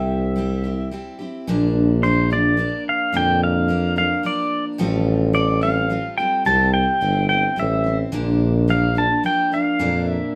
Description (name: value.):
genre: honky-tonk and classic country.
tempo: 108 BPM.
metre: 3/4.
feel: straight.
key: unclear.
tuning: A4 = 441 Hz.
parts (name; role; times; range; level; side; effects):
pedal steel guitar; melody; 0.0-10.3 s; C5 to A5; -23 LUFS; equal; none.
picked steel-string acoustic guitar; accompaniment; 0.0-10.4 s; A2 to C5; -27 LUFS; equal; none.
mellow tuba; bass; 0.0-10.2 s; G1 to F2; -22 LUFS; equal; none.
room: moderate studio reverb, RT60 0.6 s.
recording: band playing live in one room.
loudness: -19 LUFS.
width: mono.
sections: 0.0-1.5 A section; 1.5-10.4 B section.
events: none.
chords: 0.0 C; 1.5 Bb; 4.8 Fadd9/A; 6.5 C; 8.1 Bb.